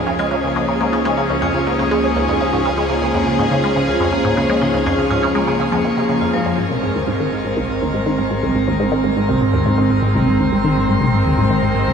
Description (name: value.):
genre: ambient, sequencer-driven space music.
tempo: 122 BPM.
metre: 4/4.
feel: straight.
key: unclear.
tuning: A4 = 440 Hz.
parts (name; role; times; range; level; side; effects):
phased analog pad; sustained chords; 0.0-11.9 s; F3 to Bb4; -18 LUFS; equal; phaser, chorus.
fat analog bass; bass; 0.0-11.9 s; Ab1 to Db2; -28 LUFS; left 1 dB; none.
vibraphone with medium hard mallets; arpeggios; 0.1-6.5 s; F3 to F4; -23 LUFS; right 1 dB; auto-pan, tape echo.
resonant blip pluck; riff; 0.1-11.9 s; C2 to Ab3; -19 LUFS; equal; phaser, tape echo.
room: wet shimmer reverb, RT60 8.2 s.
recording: none.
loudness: -15 LUFS.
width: side -6 dB against mid.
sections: 0.0-6.6 A section; 6.6-11.9 B section.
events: filter sweep on synth arpeggio sound 6.6-11.9.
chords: 0.0 Db; 6.6 Abadd9.